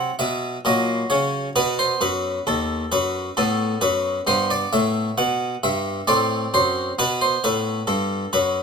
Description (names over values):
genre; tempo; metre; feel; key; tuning
classical, baroque-style suite movement for harpsichord; 66 BPM; 3/4; rubato; unclear; A4 = 440 Hz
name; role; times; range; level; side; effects
harpsichord; solo; 0.0-8.6 s; D#2 to F#5; -19 LUFS; equal; none
room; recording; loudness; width
moderate large studio reverb, RT60 1.1 s; minimal, uncompressed stereo recording; -19 LUFS; side -6 dB against mid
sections
0.0-8.6 A section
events
none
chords
0.0 F#(b5, no3); 0.6 F#/A#; 1.6 B; 3.4 B5/A; 4.3 Gmaj13; 6.1 F#dim/A; 7.0 B5